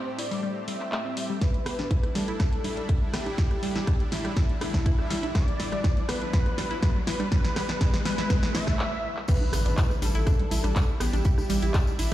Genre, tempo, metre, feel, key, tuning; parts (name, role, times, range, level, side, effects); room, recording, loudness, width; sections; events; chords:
progressive house; 122 BPM; 4/4; straight; A4 = 440 Hz
wide unison lead; melody; 0.0-12.1 s; E4 to E5; -33 LUFS; equal; digital delay
supersaw pad; sustained chords; 0.0-12.1 s; A2 to G4; -37 LUFS; right 1 dB; sidechain pumping
twinkling granular texture; texture; 0.1-1.4 s; E5; -52 LUFS; right 1 dB
analog pluck; arpeggios; 0.2-12.1 s; G3 to E5; -34 LUFS; equal; chorus, sidechain pumping, digital delay
house drum kit; drums; 0.2-12.1 s; crash cymbal, handclaps, hi-hat, snare drum; -33 LUFS; equal; sidechain pumping on hats, studio reverb, sidechain pumping on cymbals
electronic kick drum; drums; 1.4-11.8 s; -24 LUFS; equal; studio reverb
riser and impact; sound effects; 3.6-11.3 s; -36 LUFS; equal
electronic rim click and congas; percussion; 1.7-12.1 s; -38 LUFS; right 2 dB; sidechain pumping on snare, studio reverb, sidechain pumping on perc
tambourine; percussion; 9.3-12.1 s; -40 LUFS; left 2 dB
round analog bass; bass; 9.5-12.1 s; A1; -26 LUFS; equal; sidechain pumping
light reverb; played on a big sound system in a bare room, stone room reverb; -23 LUFS; side -14 dB against mid
0.0-1.4 A section; 1.4-9.3 B section; 9.3-12.1 C section
build-up 1.4-9.3; drum fill 1.4-8.8, 8.8-9.3; riser 3.6-8.8; break 8.8-9.3; drop 9.3-12.1; impact 9.3-11.3
0.0 Am7; 1.4 Em7/A